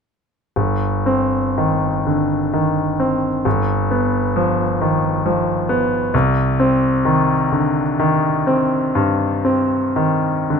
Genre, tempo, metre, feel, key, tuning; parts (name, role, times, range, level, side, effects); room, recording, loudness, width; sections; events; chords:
classical, romantic nocturne for solo piano; 36-46 BPM (dotted quarters); 12/8; rubato; C minor; A4 = 441 Hz
bright concert grand piano; solo; 0.6-10.6 s; G1 to C4; -15 LUFS; equal
light reverb; close, detailed microphones; -16 LUFS; side -6 dB against mid
0.6-10.6 A section
0.6 Cm/G; 3.5 G7; 6.1 Cm